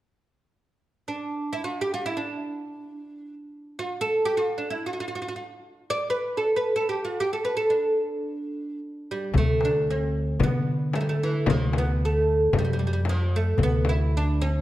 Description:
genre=Arabic maqam ensemble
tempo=free time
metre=none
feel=none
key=D maqam rast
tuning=A4 = 439 Hz
part: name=oud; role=melody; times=1.1-14.6 s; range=E3 to D5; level=-26 LUFS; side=right 1 dB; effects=none
part: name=upright bass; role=bass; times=9.3-14.6 s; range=D2 to D3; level=-24 LUFS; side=equal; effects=none
part: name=darbuka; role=percussion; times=9.3-14.6 s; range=none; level=-28 LUFS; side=left 2 dB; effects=none
part: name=frame drum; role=percussion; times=9.3-14.0 s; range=none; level=-31 LUFS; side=left 4 dB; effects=none
room=moderate recital hall reverb, RT60 1.4 s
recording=dark, warm production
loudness=-23 LUFS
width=side -15 dB against mid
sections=0.8-9.3 A section; 9.3-14.6 B section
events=none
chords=none

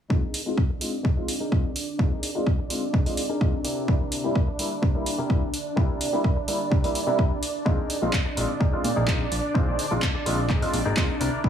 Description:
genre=filtered disco house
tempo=127 BPM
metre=4/4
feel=straight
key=Bb mixolydian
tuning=A4 = 440 Hz
part: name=bright grand piano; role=accompaniment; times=0.1-11.5 s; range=G3 to F4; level=-30 LUFS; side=left 1 dB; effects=phaser, sidechain pumping, low-pass filter
part: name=string machine, full ensemble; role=sustained chords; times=0.1-11.5 s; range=D4 to D5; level=-30 LUFS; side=right 2 dB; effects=phaser, ensemble chorus, sidechain pumping, low-pass filter
part: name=direct-recorded clean electric guitar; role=riff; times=0.1-11.5 s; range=C3 to C5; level=-34 LUFS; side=left 4 dB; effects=sidechain pumping, low-pass filter
part: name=electronic kick drum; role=drums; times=0.1-11.5 s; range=none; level=-23 LUFS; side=equal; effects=overdrive
part: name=punchy analog drum machine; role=drums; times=0.3-11.3 s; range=handclaps, hi-hat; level=-30 LUFS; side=right 1 dB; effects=overdrive, sidechain pumping on hats
part: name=fat analog bass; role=bass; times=7.7-11.5 s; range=Ab1 to Bb2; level=-27 LUFS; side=equal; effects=sidechain pumping, low-pass filter
room=light reverb, digital ambience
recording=small room ambience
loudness=-22 LUFS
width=side -9 dB against mid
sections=0.1-11.5 A section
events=filter sweep 0.1-11.5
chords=0.1 Bb7sus4; 3.6 C9; 7.7 Bb7sus4

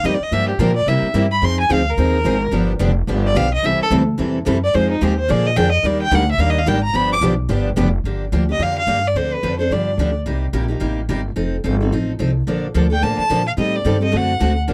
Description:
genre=acoustic string swing (jazz manouche)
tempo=217 BPM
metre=4/4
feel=swing 58% on 8ths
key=G minor from 8.0 s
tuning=A4 = 440 Hz
part: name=rich violin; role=melody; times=0.0-10.2, 12.9-14.6 s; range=Eb4 to D6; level=-22 LUFS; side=equal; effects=none
part: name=picked steel-string acoustic guitar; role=accompaniment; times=0.0-14.7 s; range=C3 to A4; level=-25 LUFS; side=equal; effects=none
part: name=picked steel-string acoustic guitar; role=accompaniment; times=0.0-7.9, 12.5-14.7 s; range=C3 to C5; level=-25 LUFS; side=equal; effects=none
part: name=upright bass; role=bass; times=0.0-14.7 s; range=F1 to C3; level=-22 LUFS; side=equal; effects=none
room=little or no reverb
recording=dry, close 1970s-style studio recording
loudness=-18 LUFS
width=mono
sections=0.0-8.0 A section; 8.0-14.7 B section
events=violin solo 0.0-8.0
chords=0.3 Gm7; 0.9 C7; 1.4 Fm7; 2.5 G7; 3.6 C6; 4.7 Fm7; 5.3 Bb7; 5.8 Ebmaj7; 6.9 G7; 8.0 Gm7; 9.2 Dm7; 9.7 G7; 10.3 Cm7; 11.4 F7; 12.5 Bbmaj7; 13.6 Am7b5; 14.1 D7

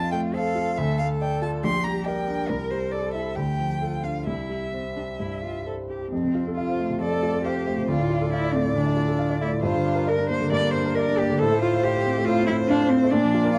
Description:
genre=quick classical-period movement for piano trio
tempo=137 BPM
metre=4/4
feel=rubato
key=F major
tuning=A4 = 440 Hz
part: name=rich violin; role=melody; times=0.0-13.6 s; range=Bb4 to C6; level=-32 LUFS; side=equal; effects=none
part: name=rich cello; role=second line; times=0.0-13.6 s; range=C4 to D5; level=-29 LUFS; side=equal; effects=none
part: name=warm baby grand piano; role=accompaniment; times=0.0-13.6 s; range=Bb1 to F5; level=-27 LUFS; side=equal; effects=none
room=light reverb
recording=dark, warm production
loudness=-24 LUFS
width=mono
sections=0.0-6.1 A section; 6.1-13.6 B section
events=none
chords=0.0 F; 0.8 Dm; 1.6 Gm/Bb; 2.5 C7; 3.4 Dm; 4.3 C; 6.1 F; 7.9 Dm; 9.6 Gm7; 11.4 F/A

